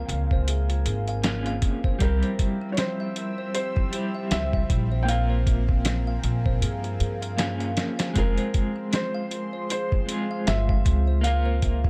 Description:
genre	trip hop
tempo	78 BPM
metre	4/4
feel	swing 57% on 16ths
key	F harmonic minor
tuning	A4 = 440 Hz
part	felt-muted upright piano	melody	0.0-11.9 s	Bb4 to G5	-36 LUFS	equal	dub echo
part	clean electric guitar	accompaniment	0.0-11.9 s	G3 to Bb4	-33 LUFS	equal	tremolo, vintage 12-bit sampler grit, tape echo
part	dark analog pad	sustained chords	0.0-11.9 s	F4 to E6	-40 LUFS	equal	chorus, phaser
part	music box	arpeggios	0.0-11.9 s	C4 to F5	-40 LUFS	equal	digital delay
part	upright bass	bass	0.0-11.9 s	F1 to G2	-27 LUFS	equal	tube saturation
part	bowed-like drone	texture	0.0-11.9 s	F3 to C4	-43 LUFS	equal	none
part	dusty soul sampler-style drum kit	drums	0.1-11.9 s	hi-hat, kick drum, snare drum	-27 LUFS	equal	none
room	light reverb, studio reverb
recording	dark, warm production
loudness	-25 LUFS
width	mono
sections	0.0-11.9 A section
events	none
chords	0.0 Db6; 2.0 C; 5.1 Bbm7; 8.2 Fm; 11.2 Db6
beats	0.47 1.24 | 2.01 2.78 3.55 4.32 | 5.09 5.86 6.63 7.40 | 8.17 8.94 9.71 10.47 | 11.24

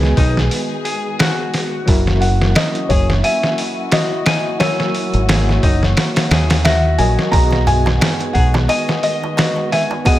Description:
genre	trip hop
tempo	88 BPM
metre	4/4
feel	swing 56% on 16ths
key	unclear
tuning	A4 = 439 Hz
part	felt-muted upright piano	melody	0.0-10.2 s	B4 to A#5	-21 LUFS	left 1 dB	tape echo
part	overdriven reed electric piano	accompaniment	0.0-10.2 s	F#3 to E6	-24 LUFS	equal	tremolo, tape echo
part	dark studio string section	sustained chords	0.0-10.2 s	D#3 to G#4	-25 LUFS	equal	none
part	clean electric guitar	arpeggios	0.0-10.2 s	D#4 to G#5	-24 LUFS	left 3 dB	vibrato effect, ping-pong delay
part	deep dub fingered electric bass	bass	0.0-8.7 s	F#1 to D#2	-16 LUFS	equal	none
part	trip hop sampler-style drum kit	drums	0.0-10.2 s	hi-hat, kick drum, snare drum	-17 LUFS	equal	small room ambience
part	darbuka	percussion	7.3-10.2 s	none	-25 LUFS	right 3 dB	none
room	little or no reverb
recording	none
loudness	-13 LUFS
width	side -14 dB against mid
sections	0.0-10.2 A section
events	none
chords	0.0 B6; 1.9 F#7; 7.3 B6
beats	0.51 1.20 | 1.88 2.56 3.24 3.92 | 4.60 5.29 5.97 6.65 | 7.33 8.01 8.70 9.38 | 10.06

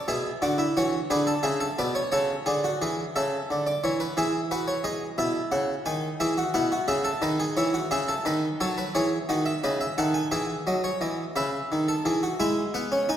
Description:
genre	classical, baroque-style 3-part fugue for harpsichord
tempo	58 BPM (dotted quarters)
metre	12/8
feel	straight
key	unclear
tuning	A4 = 440 Hz
part	harpsichord	solo	0.0-13.2 s	B2 to G#5	-24 LUFS	equal	none
room	wet concert hall reverb, RT60 1.9 s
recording	heard from further back in the room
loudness	-24 LUFS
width	side -10 dB against mid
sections	0.0-12.4 A section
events	none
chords	0.1 E7/B; 2.1 A/C#; 4.2 E; 8.3 B7/D#; 12.4 E/G#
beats	| 0.08 1.11 2.13 3.15 | 4.18 5.19 6.21 7.23 | 8.25 9.29 10.32 11.36 | 12.40

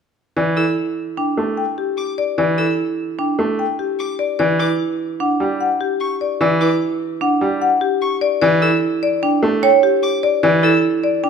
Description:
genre	classical, minimalist pattern music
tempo	149 BPM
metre	5/4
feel	straight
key	unclear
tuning	A4 = 438 Hz
part	marimba with medium hard mallets	melody	0.4-11.3 s	G4 to G5	-19 LUFS	left 8 dB	none
part	bright grand piano	accompaniment	0.4-10.7 s	E3 to A3	-20 LUFS	right 2 dB	none
part	marimba with hard mallets	arpeggios	0.6-11.3 s	D4 to C#5	-20 LUFS	right 9 dB	none
part	rich violin	arpeggios	0.6-10.8 s	C#6 to E6	-26 LUFS	left 3 dB	none
room	moderate recital hall reverb, RT60 1.4 s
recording	minimal, uncompressed stereo recording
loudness	-16 LUFS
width	side -6 dB against mid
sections	0.4-11.3 A section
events	none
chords	0.4 A7sus4/E; 4.4 Em9; 8.4 A7sus4/E (rootless)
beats	| 0.37 0.77 1.17 1.57 1.98 | 2.38 2.78 3.19 3.59 3.99 | 4.39 4.80 5.20 5.60 6.00 | 6.41 6.81 7.21 7.62 8.02 | 8.42 8.82 9.22 9.63 10.03 | 10.43 10.84 11.24

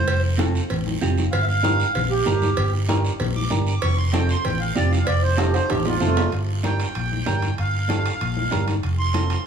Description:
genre	latin, cumbia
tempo	192 BPM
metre	4/4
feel	straight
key	G minor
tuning	A4 = 443 Hz
part	accordion	melody	0.0-9.4 s	A3 to D6	-25 LUFS	right 3 dB	none
part	fingered electric bass	bass	0.1-9.3 s	F1 to Bb1	-22 LUFS	equal	none
part	cowbell and timbales	percussion	0.1-9.5 s	none	-30 LUFS	right 3 dB	none
part	guiro	percussion	0.1-9.5 s	none	-35 LUFS	right 5 dB	none
part	congas	percussion	0.2-9.3 s	none	-28 LUFS	left 4 dB	none
part	semi-hollow electric guitar	accompaniment	0.4-9.4 s	C4 to Bb4	-29 LUFS	right 5 dB	none
room	light reverb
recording	studio reverb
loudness	-19 LUFS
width	side -7 dB against mid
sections	0.0-6.3 A section; 6.3-9.5 B section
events	accordion solo 0.0-6.3; drum fill 5.4-6.3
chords	0.0 F; 1.3 Gm7; 3.8 F; 6.3 Gm7; 8.8 F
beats	| 0.07 0.39 0.70 1.01 | 1.32 1.64 1.95 2.26 | 2.58 2.89 3.20 3.51 | 3.83 4.14 4.45 4.76 | 5.08 5.39 5.70 6.01 | 6.33 6.64 6.95 7.27 | 7.58 7.89 8.21 8.52 | 8.83 9.15 9.46

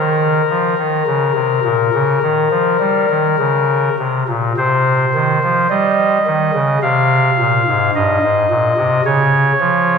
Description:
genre	classical, chorale-style piece for pipe organ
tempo	53 BPM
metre	4/4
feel	rubato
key	unclear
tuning	A4 = 439 Hz
part	pipe organ, soft reed	solo	0.0-10.0 s	G2 to F5	-12 LUFS	left 1 dB	none
room	wet church reverb, RT60 2.5 s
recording	minimal, uncompressed stereo recording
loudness	-12 LUFS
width	side -6 dB against mid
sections	0.0-10.0 A section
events	none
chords	0.0 Eb5; 4.6 Cm; 6.8 Ab; 9.1 Db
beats	1.08 2.24 3.41 | 4.57 5.71 6.83 7.94 | 9.05

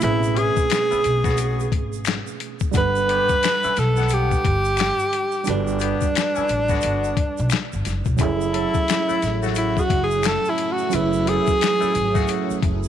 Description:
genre	R&B, neo-soul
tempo	88 BPM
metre	4/4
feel	swing 62% on 16ths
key	unclear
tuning	A4 = 440 Hz
part	breathy tenor saxophone	melody	0.0-12.6 s	D4 to B4	-22 LUFS	equal	tape echo
part	tine electric piano	accompaniment	0.0-12.9 s	B2 to F#5	-28 LUFS	right 12 dB	overdrive, fast stereo tremolo
part	upright bass	bass	0.0-12.9 s	E1 to B1	-25 LUFS	equal	none
part	boom bap sampler-style drum kit	drums	0.0-12.8 s	finger snaps, hi-hat, kick drum, snare drum	-24 LUFS	left 4 dB	none
part	tube shaker and finger snaps	percussion	0.0-12.9 s	none	-35 LUFS	left 1 dB	none
part	warm horn section	stabs	0.3-12.6 s	C#3 to F#5	-31 LUFS	left 12 dB	none
part	string machine, full ensemble	sustained chords	8.2-12.9 s	F#3 to E4	-29 LUFS	right 2 dB	phaser, ensemble chorus
room	light reverb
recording	1960s-style stereo with parts hard left and right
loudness	-18 LUFS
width	side -10 dB against mid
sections	0.0-12.9 A section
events	none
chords	0.0 Amaj9; 2.7 Gmaj7; 8.2 F#m7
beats	| 0.01 0.69 1.37 2.06 | 2.74 3.42 4.10 4.78 | 5.46 6.15 6.83 7.51 | 8.19 8.87 9.56 10.24 | 10.92 11.60 12.28

